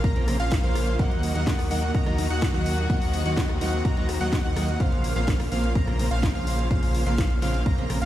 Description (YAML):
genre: EDM, festival progressive house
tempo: 126 BPM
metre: 4/4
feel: straight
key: Bb minor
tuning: A4 = 440 Hz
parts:
  - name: warm chamber string section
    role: sustained chords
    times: 0.0-6.7 s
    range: Eb3 to Gb4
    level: -34 LUFS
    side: left 2 dB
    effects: sidechain pumping
  - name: plucky unison lead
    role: arpeggios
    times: 0.0-8.1 s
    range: F5 to Bb5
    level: -33 LUFS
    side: equal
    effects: sidechain pumping, digital delay
  - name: dense compressed supersaw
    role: riff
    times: 0.0-8.1 s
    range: Bb3 to Bb5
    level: -32 LUFS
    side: equal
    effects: sidechain pumping, digital delay
  - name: wide detuned saw bass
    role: bass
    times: 0.0-8.1 s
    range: Bb1 to Eb2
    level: -27 LUFS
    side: equal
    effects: chorus, sidechain pumping
  - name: electronic kick drum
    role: drums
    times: 0.0-7.8 s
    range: none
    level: -24 LUFS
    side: equal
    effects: overdrive
  - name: house drum kit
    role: drums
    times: 0.0-8.1 s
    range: hi-hat, rim click, snare drum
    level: -34 LUFS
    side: equal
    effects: overdrive
  - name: fingerpicked plugged-in steel-string acoustic guitar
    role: accompaniment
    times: 0.2-8.0 s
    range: Db3 to C5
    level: -31 LUFS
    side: right 2 dB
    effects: sidechain pumping, digital delay
room: light reverb, digital ambience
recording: played on a big sound system in a bare room, stone room reverb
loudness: -22 LUFS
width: side -13 dB against mid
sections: 0.0-8.1 A section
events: none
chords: 0.0 Bbmadd9; 1.0 Ebm; 4.8 Bbmadd9